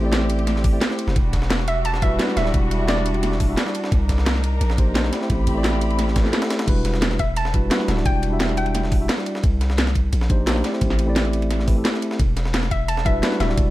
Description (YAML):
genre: liquid drum and bass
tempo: 174 BPM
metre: 4/4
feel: straight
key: E minor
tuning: A4 = 440 Hz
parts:
  - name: mellow tine electric piano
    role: accompaniment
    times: 0.0-13.7 s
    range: G3 to E5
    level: -25 LUFS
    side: equal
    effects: ping-pong delay
  - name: rich symphonic string section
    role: sustained chords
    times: 0.0-6.7 s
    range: G3 to B5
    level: -31 LUFS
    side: left 1 dB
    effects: none
  - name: long sustained 808-style bass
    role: bass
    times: 0.0-13.7 s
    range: D1 to C2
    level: -22 LUFS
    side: equal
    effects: none
  - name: breakbeat sampler-style drum kit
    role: drums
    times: 0.1-13.7 s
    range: hi-hat, ride cymbal, snare drum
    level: -30 LUFS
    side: right 1 dB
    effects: high-pass filter on cymbals, high-pass filter on snare, high-pass filter on hats
  - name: drum and bass drum kit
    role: drums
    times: 0.1-13.6 s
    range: crash cymbal, hi-hat, snare drum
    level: -24 LUFS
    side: equal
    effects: none
  - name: electronic kick drum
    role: drums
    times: 0.6-13.6 s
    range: none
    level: -20 LUFS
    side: equal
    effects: none
  - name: hollow square pluck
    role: melody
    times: 1.7-3.1, 7.2-8.8, 12.7-13.6 s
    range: D5 to A5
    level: -27 LUFS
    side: equal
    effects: chorus, tape echo
room: digital ambience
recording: none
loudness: -18 LUFS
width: side -16 dB against mid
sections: 0.0-6.7 A section; 6.7-13.7 A section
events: drop 0.0-6.7, 6.7-13.7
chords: 0.0 Am7; 1.2 Em9; 3.9 Cm9; 5.1 Am9; 6.7 Em9; 9.4 Cm9; 10.6 Am7; 12.2 Em9